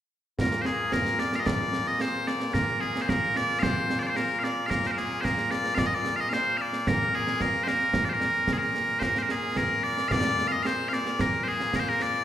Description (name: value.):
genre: scottish traditional, Scottish pipe music.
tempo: 111 BPM.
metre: 4/4.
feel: straight.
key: Bb mixolydian.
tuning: A4 = 440 Hz.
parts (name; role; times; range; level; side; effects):
loud bright bagpipes; melody; 0.4-12.2 s; Bb2 to F5; -25 LUFS; left 1 dB; none.
concert snare drum and concert bass drum; drums; 0.4-12.2 s; none; -29 LUFS; right 2 dB; none.
room: wet recital hall reverb, RT60 1.6 s.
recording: recorded in a church or concert hall.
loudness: -24 LUFS.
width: side -11 dB against mid.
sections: 0.4-12.2 A section.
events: none.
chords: none.